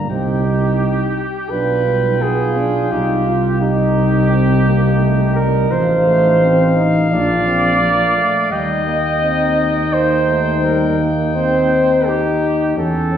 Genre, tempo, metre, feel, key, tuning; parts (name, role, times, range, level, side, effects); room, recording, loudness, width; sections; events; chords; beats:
classical, brass quintet; 85 BPM; 4/4; straight; A4 = 438 Hz
warm trumpet; melody; 0.0-13.2 s; F5 to G5; -24 LUFS; left 5 dB
clear French horn; accompaniment; 0.0-13.2 s; C#4 to F4; -23 LUFS; left 2 dB
mellow trombone; accompaniment; 0.0-13.2 s; F3 to F4; -23 LUFS; equal
dark tuba; bass; 0.0-13.2 s; G1 to E2; -18 LUFS; right 1 dB
warm flugelhorn; second line; 0.1-13.2 s; G4 to Eb5; -18 LUFS; right 2 dB
wet recital hall reverb, RT60 1.3 s; heard from further back in the room; -13 LUFS; side -9 dB against mid
0.0-13.2 A section
0.1 Cm; 1.5 G7/B; 2.9 Cm; 5.7 F7/A; 7.1 Bb; 8.5 Eb
| 0.10 0.80 1.50 2.21 | 2.92 3.62 4.32 5.01 | 5.71 6.42 7.12 7.82 | 8.52 9.22 9.93 10.64 | 11.35 12.06 12.78